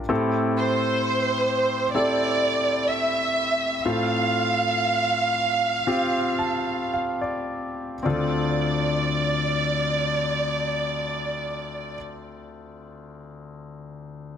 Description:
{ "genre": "pop ballad", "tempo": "53-66 BPM", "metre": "4/4", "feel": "straight", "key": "D minor", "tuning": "A4 = 440 Hz", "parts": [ { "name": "warm concert grand piano", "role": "accompaniment", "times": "0.0-14.4 s", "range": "D2 to A5", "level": "-26 LUFS", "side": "left 2 dB", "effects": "none" }, { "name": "warm studio violin section", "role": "melody", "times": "0.6-12.0 s", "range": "C5 to F5", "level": "-23 LUFS", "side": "right 2 dB", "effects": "none" } ], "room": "moderate lush hall reverb, RT60 2.0 s, small room ambience", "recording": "none", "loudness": "-21 LUFS", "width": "side -8 dB against mid", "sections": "0.0-8.1 A section; 8.1-12.5 B section", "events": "slowing down 0.1-8.1; grand piano fill 5.9-8.1", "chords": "0.1 Am7; 3.8 F/A; 8.1 Dm7" }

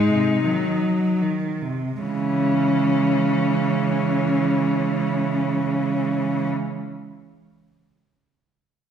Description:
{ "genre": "classical, lyrical piece for cello ensemble", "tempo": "38 BPM", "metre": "3/4", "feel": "rubato", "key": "C# minor", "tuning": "A4 = 440 Hz", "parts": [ { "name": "rich cello", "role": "melody", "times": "0.0-6.5 s", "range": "C#4 to D#4", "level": "-25 LUFS", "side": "left 5 dB", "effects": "none" }, { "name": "rich cello", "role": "second line", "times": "0.0-6.5 s", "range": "G#2 to G#3", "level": "-25 LUFS", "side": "right 4 dB", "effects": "none" }, { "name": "rich cello", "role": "accompaniment", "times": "0.0-6.5 s", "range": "E3 to G#3", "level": "-26 LUFS", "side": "right 1 dB", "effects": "none" }, { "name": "rich cello", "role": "bass", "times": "2.0-6.5 s", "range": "C#3", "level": "-24 LUFS", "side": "right 3 dB", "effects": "none" } ], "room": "wet recital hall reverb, RT60 1.6 s", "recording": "recorded in a church or concert hall", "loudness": "-19 LUFS", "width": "side -8 dB against mid", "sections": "0.0-2.0 A section; 2.0-6.8 B section", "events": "slowing down 0.0-2.0", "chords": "0.0 G#7; 2.0 C#m" }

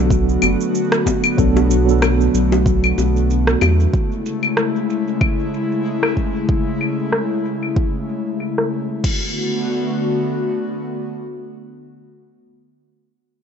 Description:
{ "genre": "sunset chillout", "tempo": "94 BPM", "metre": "4/4", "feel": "swing 56% on 16ths", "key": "B dorian", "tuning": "A4 = 440 Hz", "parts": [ { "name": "mellow tine electric piano", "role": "accompaniment", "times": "0.0-4.0 s", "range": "F#3 to A4", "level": "-20 LUFS", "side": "equal", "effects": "medium stereo tremolo, auto-pan, digital delay" }, { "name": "airy breathy pad", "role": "sustained chords", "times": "0.0-12.4 s", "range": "C#3 to F#4", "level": "-21 LUFS", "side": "left 1 dB", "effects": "chorus" }, { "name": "warm sub bass", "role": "bass", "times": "0.0-3.9 s", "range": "F#1 to E2", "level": "-17 LUFS", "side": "equal", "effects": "none" }, { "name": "deep house drum kit", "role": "drums", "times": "0.1-9.2 s", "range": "claves, crash cymbal, rim click, shaker", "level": "-22 LUFS", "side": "left 1 dB", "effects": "overdrive, low-pass filter on perc, low-pass filter on snare, low-pass filter on cymbals, low-pass filter on room" }, { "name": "electronic kick drum", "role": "drums", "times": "0.1-9.2 s", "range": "none", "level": "-19 LUFS", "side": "equal", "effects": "overdrive" }, { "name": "bongos", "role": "percussion", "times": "0.4-3.8 s", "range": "none", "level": "-24 LUFS", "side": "left 6 dB", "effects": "none" } ], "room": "little or no reverb", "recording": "nothing above 7.8 kHz", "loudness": "-16 LUFS", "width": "side -7 dB against mid", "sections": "0.0-9.0 A section; 9.0-11.6 B section", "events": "filter sweep on drum 0.0-9.0", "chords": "0.0 Bm7; 3.9 Amaj7; 9.0 Bm7" }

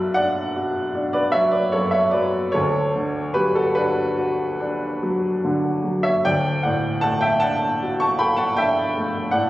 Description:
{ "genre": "classical, romantic nocturne for solo piano", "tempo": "47-54 BPM (dotted quarters)", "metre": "9/8", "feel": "rubato", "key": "B minor", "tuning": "A4 = 442 Hz", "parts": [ { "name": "clear upright piano", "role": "solo", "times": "0.0-9.5 s", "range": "B1 to C#6", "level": "-19 LUFS", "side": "equal", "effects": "none" } ], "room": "wet recital hall reverb, RT60 1.3 s", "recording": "recorded on a phone in the room, club reverb", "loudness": "-19 LUFS", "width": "side -16 dB against mid", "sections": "0.0-9.5 A section", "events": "none", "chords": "0.0 Bm; 2.6 Bm/D" }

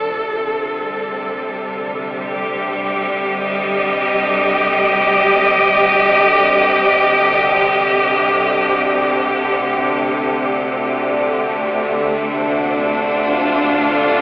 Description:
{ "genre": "dark ambient drone", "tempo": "free time", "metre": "none", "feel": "none", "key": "unclear", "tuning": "A4 = 440 Hz", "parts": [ { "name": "rich symphonic cello section", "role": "sustained chords", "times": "0.0-14.2 s", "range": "C3 to Eb5", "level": "-14 LUFS", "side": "equal", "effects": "shimmer reverb" }, { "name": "analog drone", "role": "drone", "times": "0.0-14.2 s", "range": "D2 to D3", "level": "-22 LUFS", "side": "equal", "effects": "chorus" } ], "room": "wet cathedral reverb, RT60 5.9 s", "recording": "telephone sound", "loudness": "-13 LUFS", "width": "side -21 dB against mid", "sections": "0.0-14.2 A section", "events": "fade-in on synth drone 0.0-14.2", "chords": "0.1 Cm; 9.2 Dm7" }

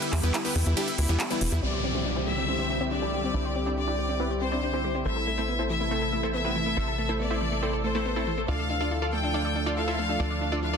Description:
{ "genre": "uplifting trance", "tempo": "140 BPM", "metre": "4/4", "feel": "straight", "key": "C major", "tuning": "A4 = 440 Hz", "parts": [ { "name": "supersaw stab", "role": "melody", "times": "0.0-10.8 s", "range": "E3 to F5", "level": "-32 LUFS", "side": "right 1 dB", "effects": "low-pass filter, ping-pong delay" }, { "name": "dark concert grand piano", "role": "second line", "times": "0.0-1.6 s", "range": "E4 to B4", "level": "-37 LUFS", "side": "left 2 dB", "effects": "low-pass filter, ping-pong delay" }, { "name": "lush unison pad", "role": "sustained chords", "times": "0.0-10.8 s", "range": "C3 to A4", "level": "-34 LUFS", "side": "right 1 dB", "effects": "chorus" }, { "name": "analog pluck", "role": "arpeggios", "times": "0.0-10.8 s", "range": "E3 to E5", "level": "-33 LUFS", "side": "left 2 dB", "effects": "chorus, ping-pong delay" }, { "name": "big-room dance drum kit", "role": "drums", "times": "0.0-1.6 s", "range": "handclaps, hi-hat, ride cymbal", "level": "-32 LUFS", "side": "right 1 dB", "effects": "overdrive, studio reverb" }, { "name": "tight sequencer bass", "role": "bass", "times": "0.1-10.8 s", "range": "E1 to E2", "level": "-30 LUFS", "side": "equal", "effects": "none" }, { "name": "clear chamber violin section", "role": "second line", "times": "1.6-10.8 s", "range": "C5 to G5", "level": "-31 LUFS", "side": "left 3 dB", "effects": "ping-pong delay" }, { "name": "downlifter", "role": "sound effects", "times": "1.6-5.1 s", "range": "none", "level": "-34 LUFS", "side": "left 1 dB", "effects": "none" } ], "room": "light reverb", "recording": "dense, heavily limited modern master", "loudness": "-25 LUFS", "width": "side -6 dB against mid", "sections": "0.0-1.6 A section; 1.6-10.8 B section", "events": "drop 0.0-1.6; filter sweep on supersaw synth 1.6-10.8", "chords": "0.0 Em7; 1.6 Cadd9; 5.1 Am; 8.5 Dm" }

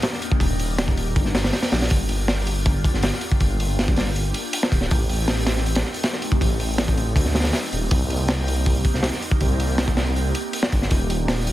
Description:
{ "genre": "drum and bass, jungle", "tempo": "160 BPM", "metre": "4/4", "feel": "straight", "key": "G minor", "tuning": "A4 = 440 Hz", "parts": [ { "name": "airy breathy pad", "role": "sustained chords", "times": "0.0-11.5 s", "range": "A3 to G4", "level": "-29 LUFS", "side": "equal", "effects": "chorus, phaser, vintage 12-bit sampler grit" }, { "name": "crunchy breakbeat drum kit", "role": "drums", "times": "0.0-11.5 s", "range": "hi-hat, kick drum, snare drum", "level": "-21 LUFS", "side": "equal", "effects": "none" }, { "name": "dark detuned saw bass", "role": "bass", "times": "0.4-11.5 s", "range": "D1 to D2", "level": "-23 LUFS", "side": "equal", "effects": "none" } ], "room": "little or no reverb", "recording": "none", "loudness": "-19 LUFS", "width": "side -15 dB against mid", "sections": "0.0-11.5 A section", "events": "none", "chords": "0.0 Ebmaj7; 1.9 Gm7; 4.9 Am7b5; 7.9 Cm7; 10.9 Ebmaj7" }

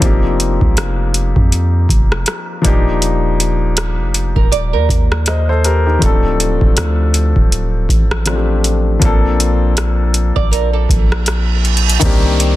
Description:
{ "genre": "contemporary R&B", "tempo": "80 BPM", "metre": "4/4", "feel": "swing 58% on 16ths", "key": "unclear", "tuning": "A4 = 442 Hz", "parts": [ { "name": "warm grand piano", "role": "accompaniment", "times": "0.0-12.6 s", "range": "Eb3 to Eb5", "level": "-18 LUFS", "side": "left 4 dB", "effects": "none" }, { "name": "long sustained 808-style bass", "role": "bass", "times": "0.0-12.6 s", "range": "D1 to F2", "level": "-15 LUFS", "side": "equal", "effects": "none" }, { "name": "booming analog drum machine", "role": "drums", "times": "0.0-12.6 s", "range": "hi-hat, kick drum, rim click", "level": "-15 LUFS", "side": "equal", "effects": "soft clipping on snare" }, { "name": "nylon-string guitar", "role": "arpeggios", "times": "4.4-5.8, 10.4-11.8 s", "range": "A4 to D5", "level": "-20 LUFS", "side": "right 9 dB", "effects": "digital delay" }, { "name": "reverse cymbal and downlifter", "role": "sound effects", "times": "11.0-12.6 s", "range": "none", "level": "-20 LUFS", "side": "right 7 dB", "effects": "none" } ], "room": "little or no reverb", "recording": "dense, heavily limited modern master", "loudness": "-12 LUFS", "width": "side -15 dB against mid", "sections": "0.0-12.0 A section", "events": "reverse cymbal 11.0-12.0", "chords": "0.0 F7sus4; 2.6 Ebmaj7; 6.0 Dm7; 9.0 Bbmaj7; 12.0 Cm9" }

